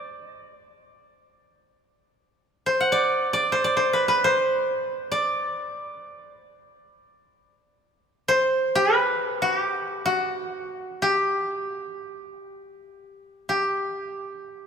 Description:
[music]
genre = japanese traditional, Japanese chamber music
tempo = free time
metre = none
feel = none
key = G ryukyu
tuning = A4 = 440 Hz
[part]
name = koto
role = solo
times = 0.0-14.7 s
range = F#4 to F#5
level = -22 LUFS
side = equal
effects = none
[sound]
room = wet church reverb, RT60 3.5 s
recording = minimal, uncompressed stereo recording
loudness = -21 LUFS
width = side -7 dB against mid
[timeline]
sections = 0.0-14.7 A section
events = slowing down 9.6-14.7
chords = none

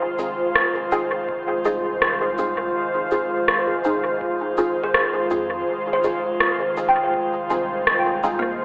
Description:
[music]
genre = ambient dub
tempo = 82 BPM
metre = 4/4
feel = swing 57% on 16ths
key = F minor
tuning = A4 = 440 Hz
[part]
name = airy breathy pad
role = sustained chords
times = 0.0-8.6 s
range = Eb3 to C5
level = -25 LUFS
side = equal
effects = chorus
[part]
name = soft dub sub bass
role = bass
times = 0.0-8.6 s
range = F1 to F2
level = -47 LUFS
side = equal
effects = none
[part]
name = filtered dub chord stab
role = stabs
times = 0.2-8.4 s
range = C4 to Ab4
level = -30 LUFS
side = equal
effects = phaser, subtle chorus, dub echo
[part]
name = electronic shaker and rim click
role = drums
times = 0.2-8.4 s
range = none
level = -26 LUFS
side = equal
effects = overdrive, dub echo
[part]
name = electronic kick drum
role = drums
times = 1.3-7.3 s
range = none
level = -49 LUFS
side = equal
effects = none
[part]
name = kalimba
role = arpeggios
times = 4.8-8.6 s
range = Bb3 to G5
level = -27 LUFS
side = equal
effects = dub echo
[sound]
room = wet lush hall reverb, RT60 2.5 s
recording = vinyl crackle, telephone sound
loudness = -22 LUFS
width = mono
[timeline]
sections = 0.0-8.6 A section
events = none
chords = 0.0 Fm7

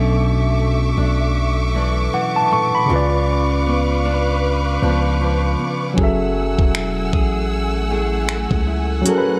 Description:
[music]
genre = contemporary R&B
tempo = 78 BPM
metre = 4/4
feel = swing 58% on 16ths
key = F# minor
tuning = A4 = 441 Hz
[part]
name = tine electric piano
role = accompaniment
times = 0.0-9.4 s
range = B2 to C#6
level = -22 LUFS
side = equal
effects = none
[part]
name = warm studio string section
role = sustained chords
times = 0.0-9.4 s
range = A3 to F#6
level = -27 LUFS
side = equal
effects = none
[part]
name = nylon-string guitar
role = arpeggios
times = 0.0-9.4 s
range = B2 to G#4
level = -27 LUFS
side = equal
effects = tape echo
[part]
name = long sustained 808-style bass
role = bass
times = 0.0-9.0 s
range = E1 to C#2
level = -23 LUFS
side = equal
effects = none
[part]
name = trap drum kit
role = drums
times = 6.0-9.3 s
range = finger snaps, hi-hat, kick drum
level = -22 LUFS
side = equal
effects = none
[sound]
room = light reverb, digital ambience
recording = none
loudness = -18 LUFS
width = mono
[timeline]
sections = 0.0-9.4 A section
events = none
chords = 0.0 Bm11; 2.9 C#7b9; 6.0 F#m9

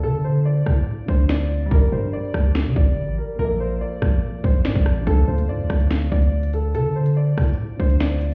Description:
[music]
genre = hip hop, drill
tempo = 143 BPM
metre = 4/4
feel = half-time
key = D minor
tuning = A4 = 436 Hz
[part]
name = dark grand piano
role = melody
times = 0.0-8.3 s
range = A4 to D5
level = -31 LUFS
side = equal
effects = low-pass filter, delay
[part]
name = dark concert grand piano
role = accompaniment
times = 0.0-8.3 s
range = D3 to D5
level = -35 LUFS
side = equal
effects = low-pass filter
[part]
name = growling 808-style bass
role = bass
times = 0.0-8.3 s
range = G1 to D3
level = -23 LUFS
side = equal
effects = none
[part]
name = drill drum kit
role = drums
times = 0.7-8.3 s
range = finger snaps, hi-hat, kick drum, rim click, snare drum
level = -21 LUFS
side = equal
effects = none
[sound]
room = small room ambience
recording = heard muffled through a wall, stone room reverb, EQ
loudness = -20 LUFS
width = mono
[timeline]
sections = 0.0-8.3 A section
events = break 0.0-5.1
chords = 0.0 Dm7; 1.7 Gm; 3.4 Bbmaj7; 5.1 Dm7

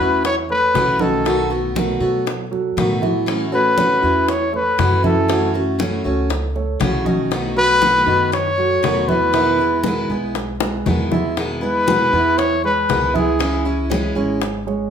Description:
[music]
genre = latin, Cuban son and guajira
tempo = 118 BPM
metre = 4/4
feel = straight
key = E major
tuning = A4 = 440 Hz
[part]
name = breathy trumpet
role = melody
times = 0.0-13.7 s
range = G#4 to C#5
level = -17 LUFS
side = left 2 dB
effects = none
[part]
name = picked steel-string acoustic guitar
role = accompaniment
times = 0.0-14.5 s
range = B2 to F#4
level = -22 LUFS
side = left 1 dB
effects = none
[part]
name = dark baby grand piano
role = arpeggios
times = 0.0-14.9 s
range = D#3 to E5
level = -23 LUFS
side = right 6 dB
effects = none
[part]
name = upright bass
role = bass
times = 0.0-14.9 s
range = G#1 to B2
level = -26 LUFS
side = equal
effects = none
[part]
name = bongos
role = percussion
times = 0.2-14.9 s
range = none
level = -25 LUFS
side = left 5 dB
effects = none
[part]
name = congas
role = percussion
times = 0.2-14.9 s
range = none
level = -26 LUFS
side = equal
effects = none
[sound]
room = wet large studio reverb, RT60 0.8 s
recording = band playing live in one room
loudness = -15 LUFS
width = side -8 dB against mid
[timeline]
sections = 0.0-11.4 A section; 11.4-14.9 A section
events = drum fill 10.6-11.4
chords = 0.0 A6; 1.3 B7; 3.3 A6; 5.3 F#m7; 7.3 B7; 9.3 Emaj7; 13.4 C#m

